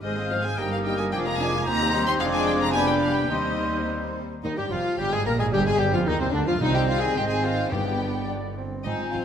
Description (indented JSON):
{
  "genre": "quick classical-period movement for symphony orchestra",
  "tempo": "109 BPM",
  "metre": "2/4",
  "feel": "rubato",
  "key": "unclear",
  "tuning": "A4 = 440 Hz",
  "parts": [
    { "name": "rich chamber violin section", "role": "melody", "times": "0.0-9.2 s", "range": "C5 to C6", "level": "-31 LUFS", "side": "left 2 dB", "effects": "none" },
    { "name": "clear oboe", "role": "second line", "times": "0.0-9.2 s", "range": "C4 to D5", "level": "-33 LUFS", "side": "right 1 dB", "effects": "none" },
    { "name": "hollow large flute ensemble", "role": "second line", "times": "0.0-9.2 s", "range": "C4 to F6", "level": "-32 LUFS", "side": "equal", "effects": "none" },
    { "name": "rich chamber violin section", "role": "second line", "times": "0.0-9.2 s", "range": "C4 to F5", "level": "-29 LUFS", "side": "left 4 dB", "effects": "none" },
    { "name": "warm clarinet", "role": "second line", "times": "0.0-9.2 s", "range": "C4 to Bb4", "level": "-33 LUFS", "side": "left 2 dB", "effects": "none" },
    { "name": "rich chamber viola section", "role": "accompaniment", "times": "0.0-9.2 s", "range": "Eb3 to G4", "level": "-33 LUFS", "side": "right 1 dB", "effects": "none" },
    { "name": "clear chamber double bass section", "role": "bass", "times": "0.0-9.2 s", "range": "F1 to Eb2", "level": "-31 LUFS", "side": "right 4 dB", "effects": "none" },
    { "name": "dark chamber cello section", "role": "bass", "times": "0.0-9.2 s", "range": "C2 to C3", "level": "-31 LUFS", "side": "right 3 dB", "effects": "none" },
    { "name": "dark French horn section", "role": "sustained chords", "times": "0.3-9.2 s", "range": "C3 to Eb4", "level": "-33 LUFS", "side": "left 3 dB", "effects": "none" },
    { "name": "mellow bassoon", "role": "accompaniment", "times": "0.6-9.2 s", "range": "C3 to Eb4", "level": "-32 LUFS", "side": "right 2 dB", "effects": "none" },
    { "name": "timpani", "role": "percussion", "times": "6.6-8.5 s", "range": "G2 to C3", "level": "-34 LUFS", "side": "left 1 dB", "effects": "none" }
  ],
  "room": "wet scoring stage reverb, RT60 1.9 s",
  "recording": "none",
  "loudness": "-22 LUFS",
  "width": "side -8 dB against mid",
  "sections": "0.0-4.4 A section; 4.4-9.2 A section",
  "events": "none",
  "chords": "0.0 Fm/Ab; 0.6 Eb/G; 1.1 Ddim/F; 1.7 Cm/Eb; 2.2 Ddim/F; 2.7 G7/F; 3.3 Cm/Eb; 4.4 Fm11; 5.5 G5; 6.6 Cm; 7.2 Ab; 7.7 G"
}